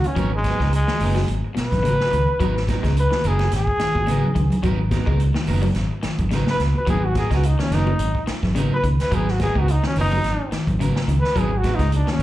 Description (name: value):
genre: afrobeat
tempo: 107 BPM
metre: 4/4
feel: swing 56% on 16ths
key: G# minor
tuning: A4 = 440 Hz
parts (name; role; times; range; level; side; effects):
- brilliant trombone; melody; 0.0-12.2 s; G#3 to B4; -24 LUFS; equal; slapback echo
- electric guitar at the edge of break-up; arpeggios; 0.0-12.2 s; B2 to G#3; -27 LUFS; left 3 dB; wide subtle chorus, slapback echo
- electric guitar at the edge of break-up; stabs; 0.0-12.2 s; F#3 to A#4; -30 LUFS; right 6 dB; slapback echo
- fingered electric bass; bass; 0.0-12.2 s; F#1 to C#2; -21 LUFS; equal; none
- vintage drum kit; drums; 0.0-12.2 s; hi-hat, kick drum, snare drum; -27 LUFS; equal; none
- congas; percussion; 0.0-12.2 s; none; -28 LUFS; equal; slapback echo
room: small room ambience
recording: live gig heard through the venue's PA, club reverb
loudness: -18 LUFS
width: side -15 dB against mid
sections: 0.0-12.2 A section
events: trombone solo 0.0-12.2; drum fill 3.9-4.6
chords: 0.0 G#m9